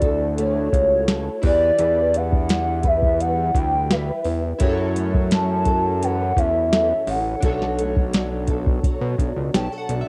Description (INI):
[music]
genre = indie pop, bedroom pop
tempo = 85 BPM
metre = 4/4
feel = straight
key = unclear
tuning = A4 = 439 Hz
[part]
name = hollow clarinet-like synth lead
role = melody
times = 0.0-8.1 s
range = C#5 to A5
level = -24 LUFS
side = equal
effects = lush chorus, cassette tape, tape echo
[part]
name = chorused retro synth keys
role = accompaniment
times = 0.0-10.1 s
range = D4 to A5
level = -32 LUFS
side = equal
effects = cassette tape
[part]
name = nylon-string guitar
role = accompaniment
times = 0.0-10.1 s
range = F#2 to B4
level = -31 LUFS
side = equal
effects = ensemble chorus, warbly pitch drift, cassette tape
[part]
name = fat analog bass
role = bass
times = 0.0-10.0 s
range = A1 to B2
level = -27 LUFS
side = equal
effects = none
[part]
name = soft vintage rhythm box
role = drums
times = 0.0-10.1 s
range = hi-hat, kick drum, snare drum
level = -24 LUFS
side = equal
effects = overdrive, cassette tape
[sound]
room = digital ambience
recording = home recording on cassette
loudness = -20 LUFS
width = mono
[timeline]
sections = 0.0-10.1 A section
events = synth keys fill 9.2-10.1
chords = 0.0 Dmaj7; 1.4 Em7; 4.6 F#m7; 7.4 Bm7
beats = 0.38 1.08 | 1.79 2.50 3.20 3.91 | 4.61 5.32 6.02 6.73 | 7.43 8.14 8.84 9.55